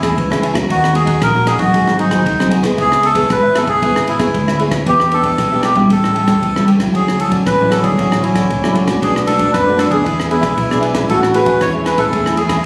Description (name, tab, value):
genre	samba and choro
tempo	116 BPM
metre	4/4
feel	straight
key	A major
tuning	A4 = 441 Hz
part	melodica	melody	0.0-12.7 s	D#4 to C#5	-18 LUFS	equal	plate reverb
part	cavaquinho	accompaniment	0.0-12.6 s	D4 to A5	-27 LUFS	equal	none
part	nylon-string guitar	accompaniment	0.0-12.7 s	F#2 to G#4	-20 LUFS	equal	none
part	fingered electric bass with an envelope filter	bass	0.0-12.6 s	G#1 to F#2	-24 LUFS	equal	none
part	compact cocktail drum kit	drums	0.0-12.6 s	kick drum, ride cymbal, rim click	-24 LUFS	equal	none
part	breathy trombone	second line	7.0-12.7 s	C#4 to F#4	-22 LUFS	equal	none
room	moderate studio reverb, RT60 0.5 s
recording	recorded on a phone in the room, club reverb, compression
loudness	-14 LUFS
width	mono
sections	0.0-12.7 A section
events	none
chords	0.0 Amaj7; 0.7 D#m7; 1.7 G#7; 2.8 C#m7; 4.9 Em7; 5.9 A7; 6.9 Dmaj9; 9.0 Bm7; 10.1 E7; 11.1 Amaj7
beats	0.18 | 0.70 1.22 1.74 2.26 | 2.78 3.30 3.82 4.34 | 4.86 5.38 5.91 6.42 | 6.94 7.46 7.98 8.50 | 9.02 9.54 10.05 10.57 | 11.09 11.61 12.12 12.64